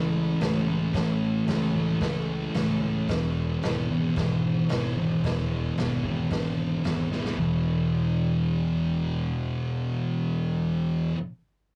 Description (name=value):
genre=garage rock duo or trio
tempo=112 BPM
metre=4/4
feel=straight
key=E major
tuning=A4 = 438 Hz
part: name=thick fuzz guitar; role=riff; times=0.0-11.2 s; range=E2 to A3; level=-28 LUFS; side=equal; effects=distortion
part: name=fuzz picked electric bass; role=bass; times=0.0-11.1 s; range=E1 to C#2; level=-35 LUFS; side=equal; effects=overdrive
part: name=vintage drum kit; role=drums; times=0.4-7.5 s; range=hi-hat, kick drum, snare drum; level=-35 LUFS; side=equal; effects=none
room=wet booth ambience, RT60 0.2 s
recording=rough rehearsal-room recording, warm saturation, faint mains hum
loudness=-27 LUFS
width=mono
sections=0.0-7.4 A section; 7.4-11.7 B section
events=drum fill 7.1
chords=0.0 A; 3.1 E; 7.4 E5